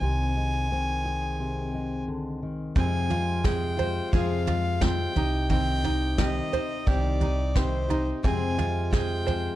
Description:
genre	indie folk with a building arrangement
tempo	88 BPM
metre	4/4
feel	straight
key	unclear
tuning	A4 = 440 Hz
part	clear fiddle	melody	0.0-9.6 s	C5 to Ab5	-32 LUFS	equal	none
part	fingerpicked steel-string acoustic guitar	accompaniment	0.0-5.5 s	C3 to Ab4	-33 LUFS	left 2 dB	none
part	upright bass	bass	0.0-9.5 s	C2 to F2	-28 LUFS	equal	none
part	picked plugged-in steel-string acoustic guitar	accompaniment	2.8-9.6 s	F2 to Ab4	-32 LUFS	left 5 dB	none
part	hand-pumped harmonium	sustained chords	2.8-9.6 s	C3 to G4	-38 LUFS	right 2 dB	none
part	open-back banjo	arpeggios	2.8-9.6 s	C4 to C5	-33 LUFS	right 6 dB	none
part	soft brush drum kit	drums	2.8-9.4 s	kick drum, snare drum, toms	-27 LUFS	equal	none
room	little or no reverb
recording	none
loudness	-24 LUFS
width	side -14 dB against mid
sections	0.0-2.8 A section; 2.8-9.6 B section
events	none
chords	0.0 Ab/C; 2.8 Fm; 5.2 Cm; 8.2 Fm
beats	| 0.01 0.70 1.39 2.07 | 2.76 3.44 4.13 4.81 | 5.50 6.18 6.87 7.55 | 8.24 8.92

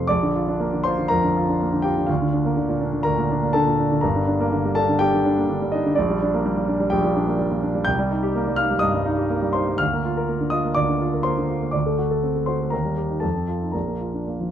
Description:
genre	classical, virtuoso piano study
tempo	123 BPM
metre	4/4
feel	rubato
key	Bb major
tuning	A4 = 440 Hz
part	dark grand piano	solo	0.0-14.5 s	G1 to G6	-19 LUFS	equal	none
room	light reverb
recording	dark, warm production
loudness	-19 LUFS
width	side -10 dB against mid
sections	0.1-14.5 A section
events	none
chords	0.1 Bb; 2.1 Bb/D; 4.0 Gm; 6.0 Gm/Bb; 7.9 Cm7; 9.8 Bb/D; 11.8 D7; 12.7 Eb; 13.2 F7; 13.8 Bb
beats	| 0.09 0.60 1.11 1.60 | 2.09 2.57 3.07 3.55 | 4.04 4.52 5.01 5.50 | 5.97 6.45 6.93 7.41 | 7.88 8.36 8.83 9.31 | 9.81 10.29 10.77 11.26 | 11.75 12.24 12.73 13.23 | 13.75 14.28

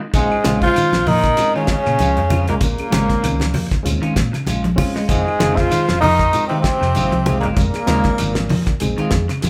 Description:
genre	afrobeat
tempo	97 BPM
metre	4/4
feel	swing 56% on 16ths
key	Bb minor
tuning	A4 = 439 Hz
part	reed electric piano	accompaniment	0.0-9.3 s	Ab3 to Ab4	-29 LUFS	equal	none
part	electric guitar at the edge of break-up	arpeggios	0.0-9.5 s	C3 to Ab3	-27 LUFS	equal	slapback echo
part	clean electric guitar	stabs	0.0-9.5 s	Eb3 to F4	-28 LUFS	equal	none
part	bright trombone	melody	0.1-8.8 s	Ab3 to F4	-21 LUFS	equal	slapback echo
part	hollow-body short-scale fingered electric bass	bass	0.1-9.5 s	F1 to Bb2	-25 LUFS	equal	none
part	damped 70s drum kit	drums	0.1-9.5 s	hi-hat, kick drum, snare drum	-23 LUFS	equal	none
part	congas	percussion	0.1-9.5 s	none	-26 LUFS	equal	none
part	shekere	percussion	0.1-9.5 s	none	-33 LUFS	equal	none
part	raspy tenor saxophone	second line	0.2-8.8 s	Ab2 to F3	-28 LUFS	equal	none
part	claves	percussion	0.3-9.4 s	none	-39 LUFS	equal	none
room	moderate large studio reverb, RT60 1.1 s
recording	band playing live in one room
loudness	-17 LUFS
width	mono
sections	0.1-9.5 A section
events	none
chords	0.1 Bbm7; 5.1 Fm7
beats	| 0.14 0.76 1.38 2.00 | 2.62 3.24 3.86 4.48 | 5.10 5.72 6.34 6.96 | 7.58 8.20 8.82 9.44

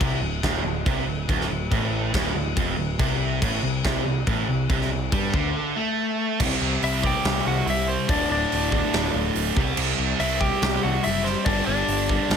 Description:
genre	hard rock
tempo	141 BPM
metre	4/4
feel	straight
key	unclear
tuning	A4 = 440 Hz
part	crunchy overdriven guitar	riff	0.0-12.4 s	D2 to C4	-29 LUFS	left 11 dB	none
part	overdriven electric guitar	riff	0.0-12.4 s	D2 to C4	-27 LUFS	right 11 dB	none
part	growling picked electric bass	bass	0.0-12.4 s	D1 to G2	-28 LUFS	equal	overdrive
part	big rock drum kit	drums	0.0-12.4 s	crash cymbal, hi-hat, kick drum, snare drum	-26 LUFS	equal	none
part	lightly driven lead guitar	melody	6.8-12.4 s	C5 to G5	-27 LUFS	left 4 dB	none
part	nasal lead guitar with a parked wah	second line	6.8-12.4 s	C4 to G4	-30 LUFS	right 4 dB	overdrive
room	little or no reverb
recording	none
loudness	-21 LUFS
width	side -7 dB against mid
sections	0.0-6.4 A section; 6.4-12.4 B section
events	none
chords	0.0 D5; 3.0 C5; 8.1 D5; 9.6 C5; 11.5 G5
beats	0.01 0.44 0.86 | 1.29 1.72 2.14 2.57 | 3.00 3.42 3.85 4.28 | 4.70 5.13 5.55 5.98 | 6.40 6.83 7.25 7.67 | 8.10 8.52 8.94 9.36 | 9.78 10.21 10.63 11.05 | 11.47 11.89 12.31

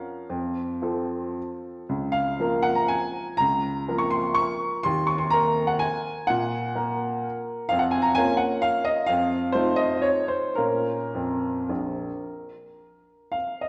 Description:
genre	classical, piano waltz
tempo	100-139 BPM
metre	3/4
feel	rubato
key	Bb minor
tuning	A4 = 440 Hz
part	bright upright piano	solo	0.0-13.7 s	Bb1 to Db6	-25 LUFS	equal	none
room	wet recital hall reverb, RT60 1.7 s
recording	worn, warbling old tape, cassette tape, warbly pitch drift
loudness	-25 LUFS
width	mono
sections	0.0-13.7 A section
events	none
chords	0.3 F; 1.9 Bbm/Db; 4.9 Ebm; 7.7 Bbm/F; 9.1 F7; 10.6 Bbm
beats	| 0.30 0.82 1.36 | 1.89 2.40 2.92 | 3.41 3.88 4.37 | 4.86 5.33 5.82 | 6.29 6.76 7.25 | 7.72 8.17 8.64 | 9.09 9.55 10.05 | 10.57 11.14 11.70 | 12.25 12.77 13.35

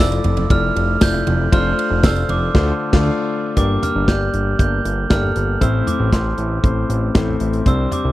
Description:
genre	piano-driven pop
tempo	117 BPM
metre	4/4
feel	straight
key	D minor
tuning	A4 = 440 Hz
part	glockenspiel with soft plastic mallets	melody	0.0-8.1 s	C6 to G6	-23 LUFS	right 4 dB	none
part	warm concert grand piano	accompaniment	0.0-8.1 s	G2 to F5	-22 LUFS	left 4 dB	none
part	fat analog bass	bass	0.0-8.1 s	F1 to D2	-19 LUFS	equal	none
part	modern studio drum kit	drums	0.1-8.0 s	crash cymbal, hi-hat, kick drum, ride cymbal, snare drum, toms	-18 LUFS	equal	none
part	tambourine	percussion	1.0-2.2 s	none	-33 LUFS	right 9 dB	none
room	little or no reverb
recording	dry, close 1970s-style studio recording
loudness	-15 LUFS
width	side -16 dB against mid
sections	0.0-3.6 A section; 3.6-8.1 B section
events	band accent 2.5-3.6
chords	0.0 Dmadd9/F; 1.5 F6; 2.5 Dm7; 3.6 Gm; 5.6 Am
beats	0.50 1.01 | 1.52 2.04 2.55 3.06 | 3.57 4.08 4.59 5.10 | 5.62 6.13 6.64 7.15 | 7.66

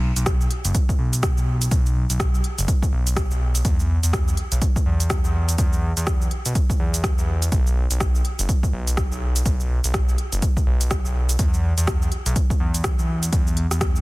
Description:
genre	afro house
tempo	124 BPM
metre	4/4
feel	swing 59% on 16ths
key	unclear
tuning	A4 = 440 Hz
part	smooth synth bass	bass	0.0-14.0 s	F#1 to E2	-22 LUFS	equal	sidechain pumping
part	afro-pop drum kit	drums	0.2-14.0 s	cabasa, hi-hat, rim click	-28 LUFS	equal	studio ambience
part	electronic kick drum	drums	0.3-13.9 s	none	-21 LUFS	equal	studio ambience
room	little or no reverb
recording	dense, heavily limited modern master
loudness	-19 LUFS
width	side -21 dB against mid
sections	0.0-14.0 A section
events	none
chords	none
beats	0.26 0.75 1.23 | 1.71 2.20 2.68 3.17 | 3.65 4.13 4.62 5.10 | 5.58 6.07 6.55 7.04 | 7.52 8.00 8.49 8.97 | 9.46 9.94 10.42 10.91 | 11.39 11.88 12.36 12.84 | 13.33 13.81

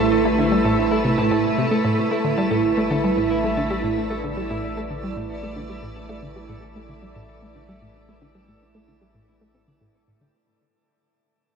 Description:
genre	ambient, sequencer-driven space music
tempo	113 BPM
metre	4/4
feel	straight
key	A minor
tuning	A4 = 440 Hz
part	evolving wavetable pad	sustained chords	0.0-10.3 s	A3 to D5	-22 LUFS	right 2 dB	ensemble chorus, built-in reverb, phaser
part	clean electric guitar	arpeggios	0.0-10.3 s	A3 to A5	-30 LUFS	left 1 dB	auto-pan, ping-pong delay
part	analog pluck	riff	0.0-10.3 s	A2 to C4	-24 LUFS	equal	chorus, ping-pong delay
part	round analog bass	bass	0.0-10.3 s	A1	-36 LUFS	equal	transformer saturation
room	wet shimmer reverb, RT60 7.6 s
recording	worn, warbling old tape, cassette tape, warbly pitch drift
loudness	-19 LUFS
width	side -6 dB against mid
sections	0.0-10.3 A section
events	fade-out on clean electric guitar 0.0-10.3; fade-out 0.0-10.3; filter sweep on synth arpeggio sound 0.0-10.3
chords	0.0 Amadd9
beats	0.25 0.78 1.31 | 1.85 2.38 2.91 3.44 | 3.97 4.50 5.03 5.56 | 6.09 6.62 7.16 7.69 | 8.22 8.75 9.28 9.81

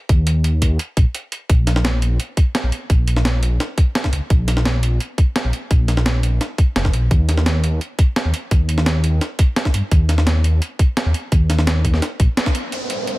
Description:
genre	liquid drum and bass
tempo	171 BPM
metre	4/4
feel	straight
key	Bb dorian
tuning	A4 = 445 Hz
part	swelling detuned saw bass	bass	0.1-12.3 s	F1 to G2	-17 LUFS	equal	tube saturation
part	breakbeat sampler-style drum kit	drums	0.1-13.1 s	hi-hat, snare drum	-22 LUFS	equal	none
part	electronic kick drum	drums	0.1-12.5 s	none	-14 LUFS	equal	none
part	ethereal airy pad	sustained chords	12.8-13.2 s	G3 to C5	-32 LUFS	right 3 dB	ensemble chorus, built-in reverb, vintage 12-bit sampler grit, sidechain pumping
part	downlifter	sound effects	12.7-13.2 s	none	-23 LUFS	right 1 dB	none
room	little or no reverb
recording	none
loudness	-15 LUFS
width	side -20 dB against mid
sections	0.0-12.7 A section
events	break 1.1-1.5; band accent 12.4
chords	none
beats	| 0.09 0.44 0.79 1.15 | 1.50 1.85 2.20 2.55 | 2.90 3.25 3.60 3.95 | 4.30 4.65 5.00 5.36 | 5.71 6.06 6.41 6.76 | 7.11 7.46 7.81 8.16 | 8.51 8.86 9.21 9.57 | 9.92 10.27 10.62 10.97 | 11.32 11.67 12.02 12.37 | 12.72 13.07

